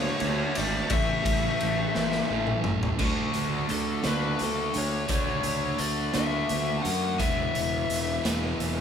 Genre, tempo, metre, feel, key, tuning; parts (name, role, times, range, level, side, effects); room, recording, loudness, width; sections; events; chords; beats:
quiet-loud alternative rock; 57 BPM (dotted quarters); 6/8; straight; A4 = 440 Hz
lead guitar through a small cranked amp; melody; 0.0-8.2 s; A4 to A5; -31 LUFS; left 4 dB; overdrive
overdriven electric guitar; riff; 0.0-8.8 s; A2 to F#4; -32 LUFS; left 8 dB
thick fuzz guitar; riff; 0.0-8.8 s; E2 to D4; -33 LUFS; right 9 dB; distortion
fuzz fingered electric bass; bass; 0.0-8.8 s; E1 to F#2; -31 LUFS; equal; overdrive
raw garage drum kit; drums; 0.2-8.8 s; crash cymbal, hi-hat, kick drum, ride cymbal, snare drum, toms; -30 LUFS; equal
electric guitar at the edge of break-up; arpeggios; 3.0-8.8 s; D3 to D4; -36 LUFS; right 6 dB
light reverb; band playing live in one room; -24 LUFS; side -8 dB against mid
0.0-3.0 A section; 3.0-8.8 B section
drum fill 2.0-3.0; lead electric guitar solo 3.0-8.8
0.0 D; 0.9 A; 3.0 D; 7.2 E
| 0.91 1.95 | 3.00 4.05 | 5.09 6.14 | 7.19 8.24